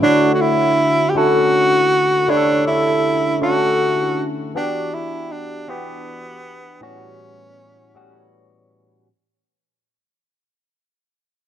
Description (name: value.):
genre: R&B.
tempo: 53 BPM (dotted quarters).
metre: 6/8.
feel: straight.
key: D major.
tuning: A4 = 442 Hz.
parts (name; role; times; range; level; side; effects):
breathy tenor saxophone; melody; 0.0-8.3 s; B3 to G4; -17 LUFS; right 1 dB; none.
barky tine electric piano; accompaniment; 0.0-9.1 s; A2 to C#5; -20 LUFS; left 1 dB; overdrive, phaser.
room: light reverb, small room ambience.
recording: dark, warm production.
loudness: -14 LUFS.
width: side -10 dB against mid.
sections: 0.0-9.1 A section.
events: fade-out 0.0-9.1.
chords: 0.0 Dmaj9; 4.5 Em9; 6.8 A13.